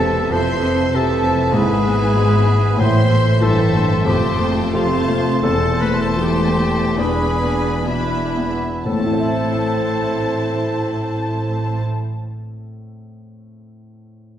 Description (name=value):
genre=classical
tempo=59-97 BPM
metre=4/4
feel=rubato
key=A minor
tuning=A4 = 440 Hz
part: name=clear baby grand piano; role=melody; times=0.0-14.4 s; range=C2 to E5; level=-21 LUFS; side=left 1 dB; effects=none
part: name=clear chamber violin section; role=melody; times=0.0-11.8 s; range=E5 to B5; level=-32 LUFS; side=left 3 dB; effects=none
part: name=clear clarinet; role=second line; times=0.0-11.8 s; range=E4 to C5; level=-24 LUFS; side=left 1 dB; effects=none
part: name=concert flute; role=second line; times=0.0-11.8 s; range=A5 to C6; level=-29 LUFS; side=left 1 dB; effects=none
part: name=warm symphonic violin section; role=second line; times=0.0-11.8 s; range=E5 to C6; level=-28 LUFS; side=left 3 dB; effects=none
part: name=dark bassoon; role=accompaniment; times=0.0-11.8 s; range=E3 to D4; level=-28 LUFS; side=equal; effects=none
part: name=rich symphonic viola section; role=accompaniment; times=0.0-11.8 s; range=A3 to C5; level=-28 LUFS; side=right 2 dB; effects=none
part: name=rich symphonic double bass section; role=bass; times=0.0-11.8 s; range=E1 to A1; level=-24 LUFS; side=right 1 dB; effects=none
part: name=warm symphonic cello section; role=bass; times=0.0-11.8 s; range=E2 to A2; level=-25 LUFS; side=right 1 dB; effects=none
part: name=mellow French horn section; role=sustained chords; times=0.3-11.8 s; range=G#3 to E4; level=-28 LUFS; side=right 1 dB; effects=none
part: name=timpani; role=percussion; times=2.8-3.7, 8.9-11.8 s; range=A2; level=-25 LUFS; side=equal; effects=none
room=wet recital hall reverb, RT60 1.4 s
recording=heard from further back in the room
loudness=-15 LUFS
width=side -10 dB against mid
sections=0.0-8.8 A section; 8.8-12.7 B section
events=slowing down 1.6-8.8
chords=0.3 Fmaj7; 1.6 E/G#; 2.8 Am; 4.1 F; 5.4 Am/E; 7.0 E7; 8.8 Am